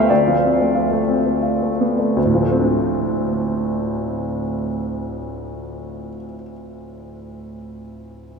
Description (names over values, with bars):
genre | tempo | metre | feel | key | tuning
neoclassical minimalist piano | 79-96 BPM | 3/4 | rubato | D minor | A4 = 440 Hz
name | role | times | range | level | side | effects
warm upright piano | solo | 0.0-8.4 s | D2 to G5 | -18 LUFS | equal | none
room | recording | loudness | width
wet cathedral reverb, RT60 5.7 s | recorded in a church or concert hall | -17 LUFS | side -5 dB against mid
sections
0.0-2.2 A section; 2.2-6.6 B section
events
slowing down 0.0-2.2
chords
0.0 F6/D; 2.2 Dm7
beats
| 0.09 0.74 1.42 | 2.16 2.89 3.61 | 4.35 5.11 5.86